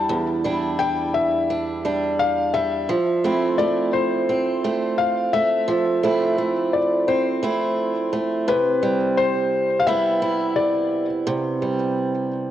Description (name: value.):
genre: folktronica.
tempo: 86 BPM.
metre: 4/4.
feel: straight.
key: C major.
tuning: A4 = 442 Hz.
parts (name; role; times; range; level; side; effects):
felt-muted upright piano; melody; 0.0-11.1 s; B4 to A5; -23 LUFS; left 4 dB; cassette tape, tape echo.
picked old ladder-braced acoustic guitar; arpeggios; 0.0-12.5 s; E2 to E4; -21 LUFS; right 2 dB; cassette tape, tape echo.
room: moderate lush hall reverb, RT60 2.1 s.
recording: home recording on cassette.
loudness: -19 LUFS.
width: side -11 dB against mid.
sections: 0.0-8.5 A section; 8.5-12.5 B section.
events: none.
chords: 0.0 Em7; 2.9 Fmaj7; 8.5 Cmaj7.